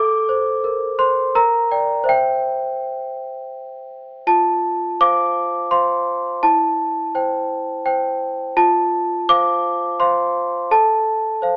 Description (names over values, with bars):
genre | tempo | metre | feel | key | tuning
classical, lullaby for celesta | 84 BPM | 3/4 | straight | F major | A4 = 439 Hz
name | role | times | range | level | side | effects
large celesta | solo | 0.0-11.6 s | E4 to D6 | -19 LUFS | equal | none
room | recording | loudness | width
light reverb | AM radio sound | -19 LUFS | mono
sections
0.0-4.3 A section; 4.3-11.6 B section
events
none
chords
0.0 Amadd11; 1.4 Gm/Bb; 2.1 C; 4.3 F; 6.4 C/E; 8.6 F; 10.7 F/A